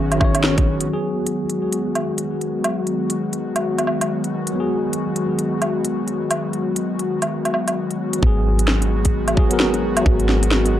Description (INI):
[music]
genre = future garage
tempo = 131 BPM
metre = 4/4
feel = swing 61% on 16ths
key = G# minor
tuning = A4 = 440 Hz
[part]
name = tine electric piano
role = accompaniment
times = 0.0-10.8 s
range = D#3 to C#5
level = -25 LUFS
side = right 1 dB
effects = overdrive, medium stereo tremolo, sidechain pumping, tape echo
[part]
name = airy breathy pad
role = sustained chords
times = 0.0-10.8 s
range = D#3 to F#4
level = -22 LUFS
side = left 2 dB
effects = chorus, sidechain pumping
[part]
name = soft 808-style bass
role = bass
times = 0.0-0.9, 8.2-10.8 s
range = G#1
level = -21 LUFS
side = equal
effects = sidechain pumping
[part]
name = organic electronic drum kit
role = drums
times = 0.1-10.7 s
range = hi-hat, snare drum, woodblock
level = -22 LUFS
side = equal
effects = overdrive
[part]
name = electronic kick drum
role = drums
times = 0.2-0.7, 8.2-10.2 s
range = none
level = -17 LUFS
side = equal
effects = none
[sound]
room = little or no reverb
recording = dry, gritty hardware recording, transformer saturation, cassette tape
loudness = -18 LUFS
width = side -12 dB against mid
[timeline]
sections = 0.9-8.2 A section; 8.2-10.8 B section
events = band accent 0.4; filter sweep on analog synth pad 0.9-8.2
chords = 0.0 Badd9/G#; 0.9 G#m7